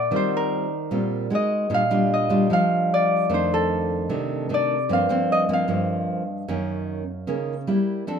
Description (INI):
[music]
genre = bossa nova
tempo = 151 BPM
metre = 4/4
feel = straight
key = unclear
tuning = A4 = 440 Hz
[part]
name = Celtic harp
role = melody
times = 0.0-7.7 s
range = A4 to F#5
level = -22 LUFS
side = left 1 dB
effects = none
[part]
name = nylon-string guitar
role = accompaniment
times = 0.0-8.2 s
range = F2 to A4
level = -23 LUFS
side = right 1 dB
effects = none
[sound]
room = light reverb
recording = minimal, uncompressed stereo recording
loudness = -20 LUFS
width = side -7 dB against mid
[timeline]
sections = 0.0-8.1 A section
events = none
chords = 0.1 Eb69; 1.3 Ebmadd11/Ab; 1.7 Bb6; 3.3 F6; 4.9 Eb69/G (rootless); 6.5 Gb6; 7.7 Gm6